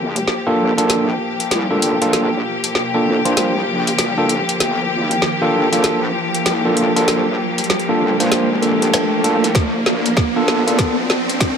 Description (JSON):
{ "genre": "glitch hop", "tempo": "97 BPM", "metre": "4/4", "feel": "swing 63% on 16ths", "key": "G minor", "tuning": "A4 = 440 Hz", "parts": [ { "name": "rich studio string section", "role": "sustained chords", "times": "0.0-11.6 s", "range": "F3 to G4", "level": "-21 LUFS", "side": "left 2 dB", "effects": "vintage 12-bit sampler grit, sidechain pumping" }, { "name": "wobble bass", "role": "bass", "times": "0.0-11.6 s", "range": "F1 to G2", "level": "-25 LUFS", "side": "equal", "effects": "chorus, high-pass filter" }, { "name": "riser", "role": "sound effects", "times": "1.9-11.6 s", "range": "none", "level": "-23 LUFS", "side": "right 1 dB", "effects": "none" }, { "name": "drum and bass drum kit", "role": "drums", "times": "0.2-11.6 s", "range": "hi-hat, snare drum", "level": "-20 LUFS", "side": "equal", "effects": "none" }, { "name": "overdriven tine electric piano", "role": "stabs", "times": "0.5-11.0 s", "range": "Bb3 to C5", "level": "-19 LUFS", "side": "right 1 dB", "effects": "sidechain pumping, low-pass filter, ping-pong delay" }, { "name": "electronic kick drum", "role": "drums", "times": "9.5-11.6 s", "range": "none", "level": "-18 LUFS", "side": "equal", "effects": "none" } ], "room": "moderate plate reverb, RT60 1.6 s, digital ambience", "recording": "high-pass filter", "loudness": "-14 LUFS", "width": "side -6 dB against mid", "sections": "0.0-11.6 A section", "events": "build-up 0.0-11.6; drum fill 0.0-11.6; riser 1.9-11.6", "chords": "0.0 Gm7" }